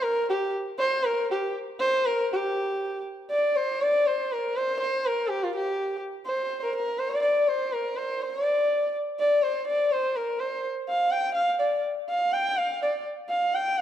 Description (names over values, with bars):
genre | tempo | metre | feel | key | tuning
indian classical | 122 BPM | 3/4 | straight | unclear | A4 = 439 Hz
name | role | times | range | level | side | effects
dark sarangi | solo | 0.0-13.8 s | F4 to G5 | -24 LUFS | equal | none
room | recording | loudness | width
moderate scoring stage reverb, RT60 1.6 s | none | -24 LUFS | side -10 dB against mid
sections
0.0-2.3 A section; 2.3-13.8 B section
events
speeding up 0.0-13.8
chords
none